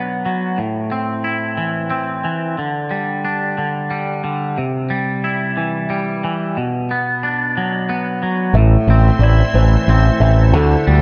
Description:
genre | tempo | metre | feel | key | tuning
post-rock | 60 BPM (dotted quarters) | 6/8 | straight | A dorian | A4 = 440 Hz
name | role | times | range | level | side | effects
twangy electric guitar | arpeggios | 0.0-11.0 s | A2 to E4 | -21 LUFS | equal | analog chorus, analog delay
soft additive organ-like pad | sustained chords | 8.5-11.0 s | D3 to C5 | -26 LUFS | equal | ensemble chorus, built-in reverb
felt-muted upright piano | arpeggios | 8.5-11.0 s | A4 to E5 | -25 LUFS | equal | analog delay
growling picked electric bass | bass | 8.5-11.0 s | A1 to D2 | -14 LUFS | equal | overdrive
room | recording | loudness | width
light reverb | dark, warm production | -17 LUFS | mono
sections
0.0-8.6 A section; 8.6-11.0 B section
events
none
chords
0.0 Bm; 0.6 Am; 2.6 Dsus4; 4.6 C; 6.6 Bm; 8.6 Am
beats
| 0.58 1.58 | 2.57 3.57 | 4.57 5.56 | 6.56 7.55 | 8.55 9.54 | 10.54

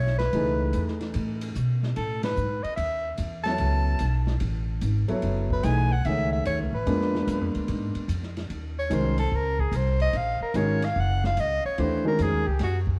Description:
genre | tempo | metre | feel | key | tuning
modal jazz | 147 BPM | 4/4 | swing 67% on 8ths | F# dorian, Eb dorian from 8.5 s | A4 = 441 Hz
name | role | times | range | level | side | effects
breathy soprano saxophone | melody | 0.0-12.8 s | Gb4 to A5 | -31 LUFS | equal | none
upright bass | bass | 0.0-13.0 s | F#1 to B2 | -29 LUFS | equal | none
open jazz drum kit | drums | 0.1-12.9 s | hi-hat, kick drum, ride cymbal, snare drum | -40 LUFS | equal | none
warm concert grand piano | accompaniment | 0.3-12.4 s | D#3 to E5 | -30 LUFS | equal | none
room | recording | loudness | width
moderate spring reverb, RT60 2.0 s | heard from further back in the room, vinyl crackle | -26 LUFS | mono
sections
0.0-8.5 A section; 8.5-13.0 B section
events
band accent 2.2; soprano saxophone solo 8.5-13.0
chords
0.0 F#m11; 6.9 A#7b9; 8.5 Ebm11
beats
| 0.34 0.74 1.15 1.56 | 1.97 2.37 2.78 3.19 | 3.60 4.00 4.41 4.82 | 5.23 5.64 6.05 6.46 | 6.87 7.28 7.68 8.09 | 8.50 8.91 9.32 9.73 | 10.14 10.55 10.96 11.37 | 11.78 12.19 12.60

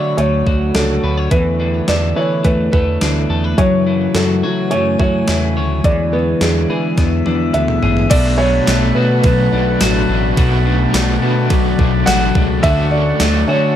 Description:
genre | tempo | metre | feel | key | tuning
dream pop | 106 BPM | 4/4 | straight | unclear | A4 = 442 Hz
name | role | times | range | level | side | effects
felt-muted upright piano | melody | 0.0-13.7 s | G#4 to F#5 | -20 LUFS | right 1 dB | tape echo
mellow tonewheel organ | sustained chords | 0.0-13.8 s | C#3 to C#6 | -23 LUFS | right 2 dB | slow rotary speaker
electric guitar at the edge of break-up | arpeggios | 0.0-13.8 s | B2 to C#5 | -18 LUFS | left 4 dB | wide subtle chorus, tape echo
fat analog bass | bass | 0.0-13.8 s | A1 to F#3 | -19 LUFS | equal | none
gated 80s digital drum machine | drums | 0.2-13.3 s | crash cymbal, hi-hat, kick drum, ride cymbal, snare drum, tambourine, toms | -18 LUFS | equal | gated reverb, gated reverb snare, overdrive
crunchy overdriven guitar | accompaniment | 8.1-13.8 s | B2 to D4 | -22 LUFS | right 5 dB | tremolo, wide subtle chorus
room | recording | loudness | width
light reverb | none | -12 LUFS | side -10 dB against mid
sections
0.0-8.1 A section; 8.1-13.8 B section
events
drum fill 7.0-8.1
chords
0.0 Dmaj7; 1.3 E7sus4; 3.6 F#m7; 5.8 E7; 8.1 Bm7; 12.6 Dmaj7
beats
0.18 0.75 | 1.32 1.88 2.45 3.02 | 3.58 4.15 4.71 5.28 | 5.85 6.41 6.98 7.54 | 8.11 8.68 9.24 9.81 | 10.37 10.94 11.51 12.07 | 12.64 13.20

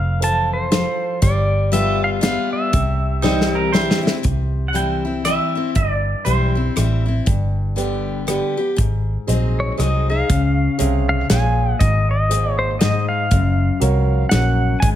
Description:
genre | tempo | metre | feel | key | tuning
honky-tonk and classic country | 119 BPM | 3/4 | swing 60% on 8ths | C major, Db major from 10.3 s | A4 = 441 Hz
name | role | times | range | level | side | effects
pedal steel guitar | melody | 0.0-3.7, 9.6-14.9 s | C5 to A5 | -22 LUFS | equal | slapback echo
picked steel-string acoustic guitar | accompaniment | 0.0-15.0 s | F2 to Ab4 | -23 LUFS | left 5 dB | none
vintage muted fingered electric bass | bass | 0.0-15.0 s | F1 to Db2 | -19 LUFS | equal | none
warm concert grand piano | accompaniment | 0.2-4.2, 7.8-14.7 s | Gb4 to G5 | -27 LUFS | right 7 dB | none
natural country drum kit | drums | 0.2-15.0 s | hi-hat, kick drum, rim click, snare drum | -20 LUFS | equal | none
clean electric guitar | second line | 3.2-7.0 s | Eb4 to G5 | -22 LUFS | right 3 dB | tape echo
room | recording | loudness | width
light reverb | close, detailed microphones | -16 LUFS | side -11 dB against mid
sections
0.0-4.2 A section; 4.2-10.3 B section; 10.3-15.0 A section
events
drum fill 3.2-4.2; clean electric guitar solo 4.2-10.3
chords
0.0 F; 1.2 G7; 2.7 C; 7.3 G; 8.8 Ab7; 10.3 Db; 11.8 Ab; 13.3 Gb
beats
0.21 0.72 | 1.22 1.72 2.23 | 2.73 3.23 3.73 | 4.24 4.74 5.25 | 5.75 6.26 6.76 | 7.27 7.77 8.28 | 8.78 9.28 9.79 | 10.29 10.79 11.30 | 11.80 12.30 12.80 | 13.31 13.81 14.31 | 14.81

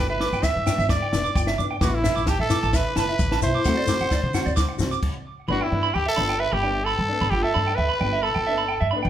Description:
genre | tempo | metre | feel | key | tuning
highlife guitar band | 131 BPM | 4/4 | straight | G major | A4 = 441 Hz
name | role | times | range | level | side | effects
growling trumpet | melody | 0.0-8.9 s | E4 to E5 | -26 LUFS | equal | none
clean electric guitar | arpeggios | 0.0-9.1 s | D5 to D6 | -26 LUFS | right 5 dB | tape echo
upright bass | bass | 0.0-9.1 s | E1 to D3 | -27 LUFS | equal | none
nylon-string guitar | accompaniment | 0.2-9.1 s | E3 to F#4 | -31 LUFS | left 4 dB | none
compact cocktail drum kit | drums | 0.2-5.1 s | crash cymbal, kick drum, snare drum | -25 LUFS | left 1 dB | none
shekere | percussion | 0.3-5.0 s | none | -30 LUFS | left 3 dB | none
room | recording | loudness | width
moderate large studio reverb, RT60 0.9 s | band playing live in one room | -20 LUFS | side -10 dB against mid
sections
0.0-5.5 A section; 5.5-9.1 B section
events
stop 5.0-5.5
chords
0.0 G6; 1.8 Asus2; 3.7 D7; 5.5 G6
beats
0.43 0.90 1.35 | 1.81 2.27 2.73 3.19 | 3.65 4.11 4.57 5.03 | 5.49 5.95 6.41 6.86 | 7.32 7.78 8.24 8.70

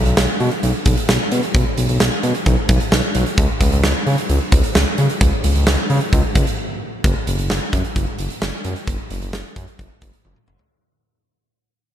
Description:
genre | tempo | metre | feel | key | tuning
synth-pop | 131 BPM | 4/4 | straight | unclear | A4 = 441 Hz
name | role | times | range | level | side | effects
smooth synth bass | bass | 0.0-10.6 s | F#1 to C#3 | -18 LUFS | equal | none
huge arena drum kit | drums | 0.1-10.7 s | hi-hat, kick drum, snare drum, toms | -18 LUFS | equal | none
room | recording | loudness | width
little or no reverb | none | -15 LUFS | side -10 dB against mid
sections
0.0-7.0 A section; 7.0-10.7 B section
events
break 6.6-7.0; fade-out 7.0-10.7; drum fill 10.2-10.7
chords
none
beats
0.17 0.63 1.09 | 1.55 2.00 2.46 2.92 | 3.38 3.84 4.29 4.75 | 5.21 5.67 6.13 6.58 | 7.04 7.50 7.96 8.42 | 8.87 9.33 9.79 10.25

